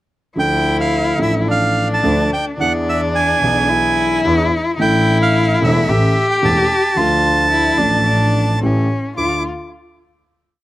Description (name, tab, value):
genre	tango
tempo	109 BPM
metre	4/4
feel	rubato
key	D minor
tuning	A4 = 440 Hz
part	bandoneon	melody	0.4-9.4 s	E5 to D6	-18 LUFS	right 2 dB	none
part	warm cello	second line	0.4-9.4 s	C#4 to G4	-18 LUFS	left 3 dB	none
part	warm concert grand piano	accompaniment	0.4-9.4 s	E1 to A4	-20 LUFS	right 1 dB	slapback echo
part	rich double bass	bass	0.4-9.4 s	E1 to E2	-21 LUFS	right 1 dB	none
room	little or no reverb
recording	recorded outdoors, with no room sound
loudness	-13 LUFS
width	side -16 dB against mid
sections	0.4-9.2 A section; 9.2-10.6 final chord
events	none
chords	0.4 Dm; 2.6 E7; 4.8 Asus4; 5.9 A; 7.0 Dm; 8.6 A7; 9.2 Dm